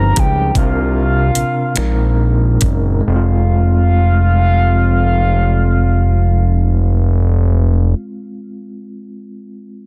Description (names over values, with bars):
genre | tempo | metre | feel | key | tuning
slow six-eight R&B | 44-52 BPM (dotted quarters) | 6/8 | straight | F minor | A4 = 440 Hz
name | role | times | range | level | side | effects
soft octave-layered synth lead | melody | 0.0-7.9 s | F5 to Bb5 | -23 LUFS | equal | chorus, tremolo
overdriven tine electric piano | accompaniment | 0.0-9.9 s | Bb2 to C5 | -24 LUFS | equal | fast tremolo
fat analog bass | bass | 0.0-7.9 s | F1 to Db2 | -15 LUFS | equal | none
smooth R&B drum kit | drums | 0.2-2.8 s | finger snaps, hi-hat, kick drum | -19 LUFS | equal | soft clipping on snare
room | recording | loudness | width
digital ambience | dense, heavily limited modern master | -14 LUFS | mono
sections
0.0-3.1 A section; 3.1-8.5 B section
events
slowing down 0.0-3.1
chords
0.0 F9sus4; 0.5 C9sus4; 1.8 Bb9sus4; 3.1 Fm